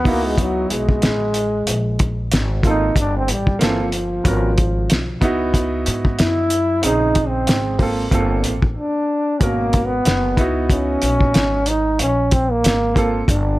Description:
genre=hip hop, jazz-hop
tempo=93 BPM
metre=4/4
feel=swing 57% on 16ths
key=unclear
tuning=A4 = 441 Hz
part: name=breathy trombone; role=melody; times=0.0-13.6 s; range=E3 to E4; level=-20 LUFS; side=equal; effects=none
part: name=clear concert grand piano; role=accompaniment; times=0.0-13.2 s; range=B2 to A#4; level=-23 LUFS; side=right 2 dB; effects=none
part: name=upright bass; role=bass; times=0.0-13.6 s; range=F#1 to G#2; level=-22 LUFS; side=equal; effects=none
part: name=cloth-damped thuddy drum kit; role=drums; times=0.1-13.5 s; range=hi-hat, kick drum, snare drum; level=-18 LUFS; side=equal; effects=none
room=small room ambience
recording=none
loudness=-16 LUFS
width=side -18 dB against mid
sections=0.0-13.6 A section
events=trombone solo 0.0-13.6; break 8.8-9.4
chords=0.1 C#m11; 1.7 A#sus2; 3.0 Gm11; 4.3 G#m11; 5.2 C#m11; 6.8 A#m11; 8.1 Gm11; 9.4 G#m11; 10.4 C#m11; 12.0 A#sus2

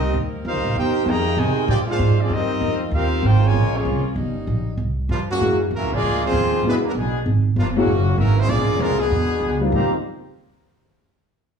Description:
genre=jazz, big band swing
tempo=194 BPM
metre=4/4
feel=swing 62% on 8ths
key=Eb major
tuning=A4 = 438 Hz
part: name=clear trumpet section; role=melody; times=0.0-9.9 s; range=Gb3 to Bb5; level=-23 LUFS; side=left 1 dB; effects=plate reverb
part: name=bright trombone section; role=second line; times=0.0-9.9 s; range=Bb2 to G4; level=-26 LUFS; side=right 3 dB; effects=none
part: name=bright saxophone section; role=sustained chords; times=0.0-4.8 s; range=D3 to Bb4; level=-33 LUFS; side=left 2 dB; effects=none
part: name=upright bass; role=bass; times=0.0-9.9 s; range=F1 to C3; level=-20 LUFS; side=right 1 dB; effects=none
part: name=warm grand piano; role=accompaniment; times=5.4-9.9 s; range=G3 to Gb4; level=-22 LUFS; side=left 2 dB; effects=none
room=moderate large studio reverb, RT60 0.9 s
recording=heard from further back in the room, studio ambience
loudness=-18 LUFS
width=side -6 dB against mid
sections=0.0-4.8 A section; 4.8-9.7 B section; 9.7-11.0 C section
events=none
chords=0.0 Cm7; 1.1 Fm9; 1.7 Bb9; 2.3 Eb69; 3.5 Bbm7; 4.2 Eb7; 4.8 Bbm69/C; 5.4 Gb7; 6.0 Bb7; 6.6 E7; 7.3 Gbmaj9; 7.9 Gb7; 8.5 Bb7; 9.1 E7; 9.7 Eb69

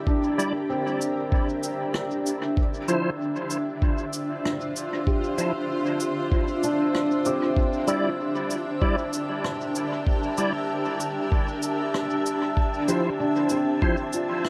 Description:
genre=ambient dub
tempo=96 BPM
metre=4/4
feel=swing 57% on 16ths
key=D minor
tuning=A4 = 440 Hz
part: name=granular cloud pad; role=sustained chords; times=0.0-14.5 s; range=D4 to E5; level=-29 LUFS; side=equal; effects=built-in reverb
part: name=felt-muted upright piano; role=arpeggios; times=0.0-14.5 s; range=C4 to E6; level=-32 LUFS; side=equal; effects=dub echo
part: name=electronic kick drum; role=drums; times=0.1-14.0 s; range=none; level=-26 LUFS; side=equal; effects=none
part: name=bright tonewheel organ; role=stabs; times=0.4-14.0 s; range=F3 to D5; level=-32 LUFS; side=equal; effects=overdrive, chorus vibrato, slow rotary speaker, dub echo
part: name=cabasa and rim click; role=drums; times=0.4-14.5 s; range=none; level=-38 LUFS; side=equal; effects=dub echo
part: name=wind-like tuned noise texture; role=texture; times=8.6-14.5 s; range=A5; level=-38 LUFS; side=equal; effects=built-in reverb
room=moderate spring reverb, RT60 1.5 s, small room ambience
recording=vinyl crackle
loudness=-26 LUFS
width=mono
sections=0.0-14.5 A section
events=none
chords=0.0 Em7b5; 2.6 Dm9; 7.6 Em7b5; 12.6 Dm9

